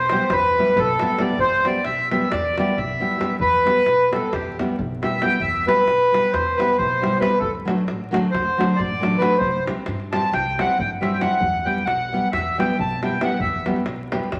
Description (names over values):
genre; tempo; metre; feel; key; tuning
balkan folk, Balkan wedding band; 270 BPM (eighths); 9/8; straight; E minor; A4 = 440 Hz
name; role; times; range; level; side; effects
accordion; melody; 0.0-13.7 s; G4 to A5; -22 LUFS; equal; none
upright bass; bass; 0.0-14.4 s; A1 to G2; -36 LUFS; equal; none
nylon-string guitar; accompaniment; 0.1-14.3 s; F#3 to G4; -27 LUFS; equal; none
davul; percussion; 0.1-14.4 s; none; -32 LUFS; equal; none
room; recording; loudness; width
wet large studio reverb, RT60 1.5 s; vinyl crackle; -21 LUFS; mono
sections
0.0-3.4 A section; 3.4-14.4 B section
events
accordion solo 3.4-14.4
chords
0.0 Em; 7.4 D; 9.4 C; 11.4 Em